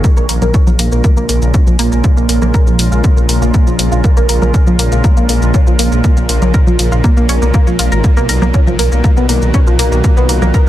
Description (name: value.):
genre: melodic techno.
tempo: 120 BPM.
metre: 4/4.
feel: straight.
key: Bb phrygian.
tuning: A4 = 444 Hz.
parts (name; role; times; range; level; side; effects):
evolving wavetable pad; sustained chords; 0.0-10.7 s; Db3 to Bb4; -21 LUFS; right 1 dB; chorus, built-in reverb, sidechain pumping.
tight sequenced synth; arpeggios; 0.0-10.6 s; F3 to Bb4; -18 LUFS; equal; chorus, phaser, sidechain pumping, tape echo.
bowed-like drone; drone; 0.0-10.7 s; Bb2; -24 LUFS; right 2 dB; built-in reverb, sidechain pumping.
electronic kick drum; drums; 0.0-10.6 s; none; -11 LUFS; equal; none.
electronic shaker, hi-hat and congas; drums; 0.0-10.6 s; none; -19 LUFS; right 1 dB; none.
dark detuned saw bass; bass; 0.2-10.5 s; Ab1 to Cb2; -14 LUFS; equal; sidechain pumping.
room: little or no reverb.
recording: dense, heavily limited modern master.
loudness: -9 LUFS.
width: side -13 dB against mid.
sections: 0.0-10.7 A section.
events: none.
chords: 0.0 Bbm7; 8.0 Bmaj7.